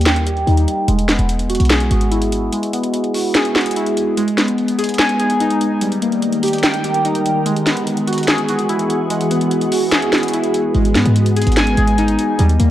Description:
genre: hip hop, trap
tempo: 146 BPM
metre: 4/4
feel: half-time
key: G# minor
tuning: A4 = 440 Hz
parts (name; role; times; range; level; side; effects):
- warbly lo-fi synth keys; accompaniment; 0.0-12.7 s; G3 to G#5; -17 LUFS; equal; chorus, phaser, low-pass filter
- short 808-style bass; bass; 0.0-2.5, 10.7-12.7 s; E1 to G#2; -15 LUFS; equal; none
- trap drum kit; drums; 0.0-12.7 s; hi-hat, snare drum; -19 LUFS; equal; none
- glassy FM pad; sustained chords; 4.8-12.7 s; D#3 to A#4; -22 LUFS; equal; ensemble chorus, built-in reverb
room: light reverb, digital ambience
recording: worn, warbling old tape, cassette tape, warbly pitch drift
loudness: -14 LUFS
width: side -12 dB against mid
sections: 0.0-12.7 A section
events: filter sweep on synth keys 0.0-4.2; kick muted 2.5-4.2, 4.2-10.7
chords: 0.0 D#; 0.9 Eadd9; 4.2 G#m; 5.8 D#; 7.5 Eadd9; 10.7 G#m

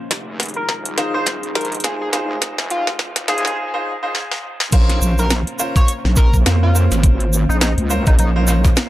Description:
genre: glitch hop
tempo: 104 BPM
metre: 4/4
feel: swing 58% on 16ths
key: Bb minor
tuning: A4 = 439 Hz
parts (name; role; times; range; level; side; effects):
- dark analog pad; sustained chords; 0.0-8.9 s; Bb3 to C5; -28 LUFS; right 1 dB; chorus, vintage 12-bit sampler grit, sidechain pumping
- wobble bass; bass; 0.1-8.7 s; Eb1 to F2; -18 LUFS; equal; chorus, high-pass filter
- drum and bass drum kit; drums; 0.1-8.9 s; crash cymbal, hi-hat, snare drum; -21 LUFS; equal; high-pass filter on snare, high-pass filter on hats, high-pass filter on cymbals, high-pass filter on room
- electronic kick drum; drums; 0.1-8.7 s; none; -14 LUFS; equal; high-pass filter on kick, high-pass filter on room
- sync lead; melody; 0.6-8.3 s; Eb4 to Db5; -25 LUFS; equal; chorus, dub echo
- bright baby grand piano; stabs; 1.0-8.9 s; Db4 to C5; -25 LUFS; equal; sidechain pumping, low-pass filter, dub echo
- tube shaker; percussion; 4.7-8.9 s; none; -26 LUFS; right 2 dB; none
room: light reverb, digital ambience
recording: echo-heavy mix, high-pass filter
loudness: -15 LUFS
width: side -15 dB against mid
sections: 0.0-4.7 A section; 4.7-8.9 B section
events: build-up 0.0-4.7; drum fill 0.0-3.6, 4.2-4.7; filter sweep on analog synth lead 0.0-4.7; break 3.6-4.7; drop 4.7-8.9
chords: 0.1 Fm7; 4.7 Bbmadd9

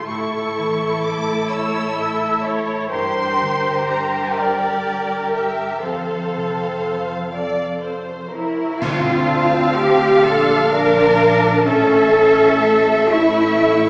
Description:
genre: cinematic, emotional film score for orchestra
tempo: 42 BPM (dotted quarters)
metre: 6/8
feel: rubato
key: D minor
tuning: A4 = 438 Hz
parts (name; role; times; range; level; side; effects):
- rich symphonic violin section; melody; 0.0-13.9 s; D5 to E6; -27 LUFS; equal; none
- clear symphonic violin section; second line; 0.0-13.9 s; E4 to F5; -22 LUFS; equal; none
- rich symphonic viola section; accompaniment; 0.0-13.9 s; A3 to E5; -22 LUFS; equal; none
- concert harp; arpeggios; 0.0-13.9 s; F2 to C#6; -29 LUFS; equal; none
- rich symphonic cello section; bass; 0.0-13.9 s; F2 to Bb4; -17 LUFS; equal; none
- cymbal swell, clash cymbals and concert bass drum; percussion; 5.8-10.7 s; none; -30 LUFS; equal; none
- clear studio double bass section; bass; 8.8-13.9 s; A1 to D2; -25 LUFS; equal; none
room: wet scoring stage reverb, RT60 1.5 s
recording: heard from further back in the room, small speaker sound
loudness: -15 LUFS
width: side -34 dB against mid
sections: 0.0-8.8 A section; 8.8-13.9 A section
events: band accent 8.8-9.8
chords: 0.1 A; 2.9 Gm; 5.9 F; 8.8 Dm7; 11.7 A

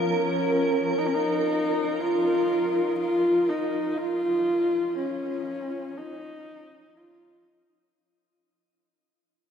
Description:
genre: ambient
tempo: 60 BPM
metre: 4/4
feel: straight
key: Bb minor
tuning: A4 = 437 Hz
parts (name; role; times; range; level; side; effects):
- dark horsehead fiddle; melody; 0.0-7.7 s; Db4 to F4; -25 LUFS; equal; shimmer reverb, diffuse ambient delay
- granular cloud pad; sustained chords; 0.0-8.0 s; F3 to Bb4; -28 LUFS; right 1 dB; built-in reverb, shimmer reverb
room: wet huge ambient reverb, RT60 8.2 s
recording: none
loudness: -23 LUFS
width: side -7 dB against mid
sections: 0.0-8.0 A section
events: fade-out on ambient pad 0.0-8.0; fade-out 2.6-8.0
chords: 0.0 Bb5

